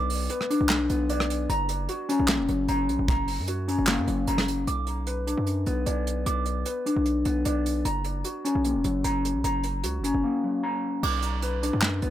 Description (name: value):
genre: hip hop, trap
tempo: 151 BPM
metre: 4/4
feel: half-time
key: B harmonic minor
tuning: A4 = 443 Hz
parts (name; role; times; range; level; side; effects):
- mellow electric guitar; arpeggios; 0.0-12.1 s; F#3 to D6; -26 LUFS; left 2 dB; low-pass filter, digital delay
- distorted 808-style bass; bass; 0.0-12.1 s; E1 to F#2; -28 LUFS; equal; distortion
- soft brush drum kit; drums; 0.1-12.1 s; crash cymbal, handclaps, hi-hat, kick drum, rim click, snare drum; -29 LUFS; right 2 dB; none
room: little or no reverb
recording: none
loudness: -24 LUFS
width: side -12 dB against mid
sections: 0.0-4.7 A section; 4.7-11.0 B section; 11.0-12.1 C section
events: none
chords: 0.0 Bm; 1.5 F#; 4.7 Bm; 7.9 F#; 11.0 Bm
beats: 0.30 0.70 1.10 | 1.50 1.89 2.29 2.69 | 3.08 3.48 3.88 4.28 | 4.67 5.07 5.47 5.87 | 6.26 6.66 7.06 7.46 | 7.85 8.25 8.65 9.04 | 9.44 9.84 10.24 10.63 | 11.03 11.43 11.83